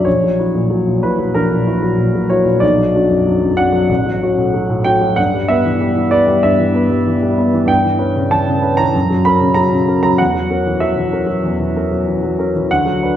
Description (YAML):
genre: classical, romantic character piece for solo piano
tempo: 95 BPM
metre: 4/4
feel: rubato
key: unclear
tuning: A4 = 435 Hz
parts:
  - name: warm grand piano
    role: solo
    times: 0.0-13.2 s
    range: A1 to B5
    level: -12 LUFS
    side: equal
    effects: none
room: wet recital hall reverb, RT60 1.4 s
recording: heard from further back in the room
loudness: -12 LUFS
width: side -10 dB against mid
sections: 0.0-13.2 A section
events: none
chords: 0.1 F#7/A#; 2.6 Bm; 3.9 F#m/A; 5.2 Em/G; 7.7 C#m7b5/G; 8.9 F#; 10.2 F#7/E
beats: | 0.06 0.70 1.34 1.98 | 2.62 3.26 3.90 4.54 | 5.18 5.81 6.43 7.06 | 7.69 8.32 8.95 9.57 | 10.19 10.81 11.44 12.06 | 12.69